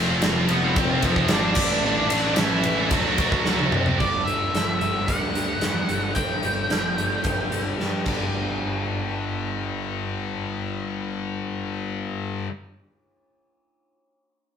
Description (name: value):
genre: quiet-loud alternative rock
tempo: 110 BPM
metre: 4/4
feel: straight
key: G major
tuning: A4 = 440 Hz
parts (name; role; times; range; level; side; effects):
- heavy high-gain guitar; riff; 0.0-4.0 s; A2 to F#4; -26 LUFS; right 8 dB; distortion
- scooped high-gain guitar; riff; 0.0-12.5 s; G2 to F4; -28 LUFS; left 6 dB; distortion
- fuzz picked electric bass; bass; 0.0-12.5 s; F1 to C3; -29 LUFS; equal; overdrive
- huge arena drum kit; drums; 0.2-8.2 s; crash cymbal, hi-hat, kick drum, ride cymbal, snare drum, toms; -25 LUFS; equal; none
- octave-fuzz lead guitar; melody; 0.5-7.7 s; E3 to G5; -26 LUFS; right 1 dB; distortion
- twelve-string electric guitar; arpeggios; 4.0-12.5 s; G3 to G4; -34 LUFS; right 6 dB; none
room: moderate large studio reverb, RT60 0.8 s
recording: band playing live in one room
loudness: -21 LUFS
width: side -8 dB against mid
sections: 0.0-4.0 A section; 4.0-8.3 B section; 8.3-12.7 C section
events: drum fill 3.5-4.0, 7.8-8.3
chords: 0.0 F; 1.6 Asus4; 2.9 D; 4.0 Gsus2; 8.1 G